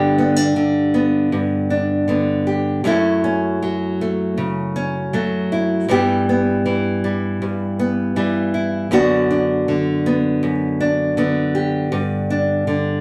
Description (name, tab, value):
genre	folk, solo fingerstyle acoustic guitar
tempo	79 BPM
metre	4/4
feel	straight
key	E dorian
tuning	A4 = 441 Hz
part	nylon-string guitar	solo	0.0-13.0 s	F#2 to G4	-19 LUFS	equal	none
room	wet studio reverb, RT60 0.8 s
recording	band playing live in one room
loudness	-19 LUFS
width	mono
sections	0.0-13.0 A section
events	none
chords	0.0 G; 2.8 F#m7; 5.9 Em/G; 8.9 Bm/F#; 11.9 G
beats	0.56 1.32 2.08 | 2.85 3.61 4.37 5.13 | 5.89 6.64 7.40 8.15 | 8.90 9.66 10.41 11.16 | 11.91 12.67